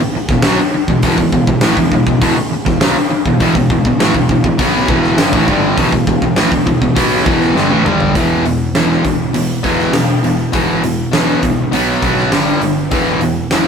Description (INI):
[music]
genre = hard rock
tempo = 101 BPM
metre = 4/4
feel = straight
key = E minor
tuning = A4 = 442 Hz
[part]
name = crunchy overdriven guitar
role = riff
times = 0.0-13.7 s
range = E2 to B3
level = -16 LUFS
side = right 6 dB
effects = none
[part]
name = distorted electric guitar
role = riff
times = 0.0-13.7 s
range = E2 to B3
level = -17 LUFS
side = left 6 dB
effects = overdrive
[part]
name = fuzz picked electric bass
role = bass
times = 0.0-13.7 s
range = E1 to C2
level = -23 LUFS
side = equal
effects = none
[part]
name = huge arena drum kit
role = drums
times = 0.3-13.7 s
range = hi-hat, kick drum, snare drum, toms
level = -16 LUFS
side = left 1 dB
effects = none
[sound]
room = moderate stone room reverb, RT60 1.0 s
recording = rough rehearsal-room recording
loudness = -11 LUFS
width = side -6 dB against mid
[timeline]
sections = 0.0-8.2 A section; 8.2-13.7 B section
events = drum fill 7.6-8.2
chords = 0.0 Em; 8.2 E5; 11.7 B5; 12.3 G5; 12.9 E5